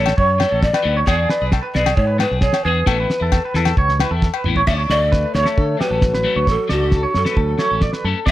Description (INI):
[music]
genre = highlife guitar band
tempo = 134 BPM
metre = 4/4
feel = straight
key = D major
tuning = A4 = 445 Hz
[part]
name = breathy mellow large pan pipes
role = melody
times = 0.0-8.3 s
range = F#4 to E5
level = -21 LUFS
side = equal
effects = none
[part]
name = electric guitar at the edge of break-up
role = accompaniment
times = 0.0-8.3 s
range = E3 to A4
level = -26 LUFS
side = left 7 dB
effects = phaser
[part]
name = clean electric guitar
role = arpeggios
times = 0.0-8.3 s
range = G4 to D5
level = -22 LUFS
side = right 3 dB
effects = tremolo, slapback echo
[part]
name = fingered electric bass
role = bass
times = 0.0-8.3 s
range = A1 to D3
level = -20 LUFS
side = equal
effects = none
[part]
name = damped 70s drum kit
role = drums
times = 0.1-8.3 s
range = crash cymbal, kick drum, snare drum, toms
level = -19 LUFS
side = equal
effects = none
[part]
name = agogo bells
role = percussion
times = 0.1-4.4 s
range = none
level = -26 LUFS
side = left 9 dB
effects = none
[part]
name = warm trombone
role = second line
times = 4.7-8.0 s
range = D3 to C#4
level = -29 LUFS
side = left 8 dB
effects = none
[sound]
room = light reverb, studio reverb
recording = none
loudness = -15 LUFS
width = side -14 dB against mid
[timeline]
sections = 0.0-4.7 A section; 4.7-8.3 B section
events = drum fill 4.2-4.7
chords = 0.0 Dmaj7; 1.1 E7; 2.9 Asus2; 4.7 Dmaj7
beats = 0.18 0.63 | 1.08 1.53 1.98 2.43 | 2.88 3.33 3.77 4.22 | 4.67 5.12 5.57 6.02 | 6.47 6.92 7.37 7.82 | 8.26